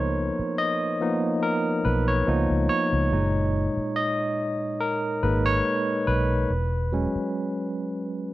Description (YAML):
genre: contemporary R&B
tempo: 71 BPM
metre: 4/4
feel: swing 54% on 16ths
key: F# major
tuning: A4 = 437 Hz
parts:
  - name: barky tine electric piano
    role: accompaniment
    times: 0.0-8.3 s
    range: A#2 to D#5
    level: -24 LUFS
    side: equal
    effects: medium stereo tremolo
  - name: vintage muted fingered electric bass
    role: bass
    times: 0.0-7.2 s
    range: E1 to C#2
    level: -25 LUFS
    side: equal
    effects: none
room: light reverb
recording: none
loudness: -22 LUFS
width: side -16 dB against mid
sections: 0.0-8.3 A section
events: tine electric piano solo 0.0-8.3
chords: 0.0 C#13; 3.1 F#69; 6.5 E6